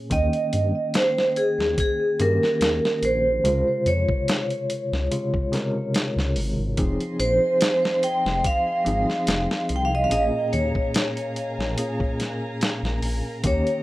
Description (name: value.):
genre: trip hop.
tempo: 72 BPM.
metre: 4/4.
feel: swing 54% on 16ths.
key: unclear.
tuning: A4 = 437 Hz.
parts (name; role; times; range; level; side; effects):
bell-like tine electric piano; accompaniment; 0.0-13.8 s; Bb2 to G5; -28 LUFS; equal; tremolo, low-pass filter.
vibraphone with hard mallets; melody; 0.1-13.8 s; Ab4 to G5; -23 LUFS; right 1 dB; tape echo.
dark detuned saw bass; bass; 0.1-13.6 s; F1 to G2; -26 LUFS; equal; tube saturation.
dusty soul sampler-style drum kit; drums; 0.1-13.8 s; hi-hat, kick drum, snare drum; -26 LUFS; equal; none.
dark studio violin section; sustained chords; 6.8-13.8 s; Ab4 to C6; -37 LUFS; equal; vintage 12-bit sampler grit.
room: moderate studio reverb, RT60 0.5 s.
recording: rough home demo mix.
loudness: -20 LUFS.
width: side -17 dB against mid.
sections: 0.0-13.8 A section.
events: filter sweep on tine electric piano 0.0-13.8.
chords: 0.1 Eb7; 3.4 Dbmaj7; 6.8 Fm7; 10.1 Bbm7.